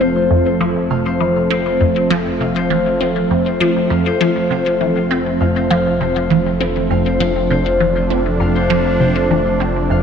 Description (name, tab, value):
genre	ambient, sequencer-driven space music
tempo	100 BPM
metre	4/4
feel	straight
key	F major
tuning	A4 = 440 Hz
part	sweeping resonant pad	sustained chords	0.0-10.0 s	F3 to A4	-18 LUFS	right 1 dB	chorus
part	Celtic harp	arpeggios	0.0-10.0 s	E4 to F5	-19 LUFS	moving between left 6 dB and right 1 dB	auto-pan, ping-pong delay, shimmer reverb
part	resonant blip pluck	riff	0.0-10.0 s	F2 to C4	-19 LUFS	equal	phaser, analog chorus, ping-pong delay
part	fat analog bass	bass	0.0-10.0 s	F1	-25 LUFS	equal	none
room	moderate plate reverb, RT60 3.2 s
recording	dark, warm production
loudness	-14 LUFS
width	side -7 dB against mid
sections	0.0-10.0 A section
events	fade-in on analog synth bass 0.0-10.0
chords	0.0 Fmaj7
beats	0.30 0.91 | 1.50 2.10 2.71 3.31 | 3.90 4.50 5.11 5.71 | 6.30 6.91 7.50 8.11 | 8.71 9.30 9.90